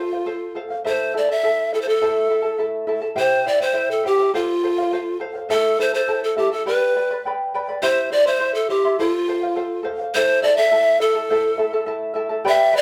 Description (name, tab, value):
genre	andean folk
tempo	103 BPM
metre	2/4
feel	straight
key	A minor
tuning	A4 = 440 Hz
part	breathy bright pan flute	melody	0.0-12.8 s	F4 to E5	-21 LUFS	equal	none
part	charango	accompaniment	0.0-12.8 s	E4 to C6	-26 LUFS	equal	none
room	moderate large studio reverb, RT60 0.8 s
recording	band playing live in one room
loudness	-20 LUFS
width	mono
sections	0.0-3.2 A section; 3.2-12.5 A section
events	none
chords	0.0 F; 0.8 Am; 3.2 C; 4.3 F; 5.5 Am; 6.7 G; 7.8 C; 9.0 F; 10.1 Am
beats	0.27 | 0.85 1.43 | 2.02 2.60 | 3.18 3.76 | 4.34 4.92 | 5.50 6.08 | 6.66 7.24 | 7.82 8.40 | 8.98 9.56 | 10.14 10.72 | 11.30 11.88 | 12.45